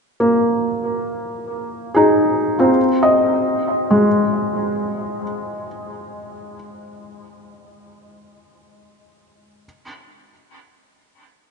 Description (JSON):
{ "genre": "ambient", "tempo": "free time", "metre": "none", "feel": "none", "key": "unclear", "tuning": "A4 = 440 Hz", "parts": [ { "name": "felt-muted upright piano", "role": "solo", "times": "0.2-9.7 s", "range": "Ab3 to Eb5", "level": "-16 LUFS", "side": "equal", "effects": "diffuse ambient delay" } ], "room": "wet concert hall reverb, RT60 2.1 s", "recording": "nothing above 10.3 kHz", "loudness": "-16 LUFS", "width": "side -5 dB against mid", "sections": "0.0-11.5 A section", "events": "none", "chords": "0.0 Bb7sus4; 2.7 Fm; 9.6 N.C." }